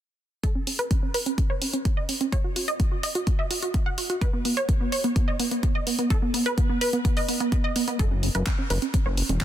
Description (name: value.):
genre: progressive house.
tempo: 127 BPM.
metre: 4/4.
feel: straight.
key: F# dorian.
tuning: A4 = 435 Hz.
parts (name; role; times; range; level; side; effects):
wide unison pluck; arpeggios; 0.4-9.4 s; B3 to F#5; -27 LUFS; right 1 dB; sidechain pumping, ping-pong delay.
electronic kick drum; drums; 0.4-9.4 s; none; -24 LUFS; equal; none.
pop drum kit; drums; 0.4-9.4 s; handclaps, hi-hat; -30 LUFS; right 1 dB; none.
fat analog bass; bass; 8.0-9.4 s; E1 to F#1; -25 LUFS; equal; sidechain pumping.
room: digital ambience.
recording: dense, heavily limited modern master.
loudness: -22 LUFS.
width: side -11 dB against mid.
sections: 0.4-8.0 A section; 8.0-9.4 B section.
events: filter sweep on synth pluck 0.4-8.0, 8.0-9.4.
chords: 0.4 F#5; 4.2 N.C.; 8.0 F#5.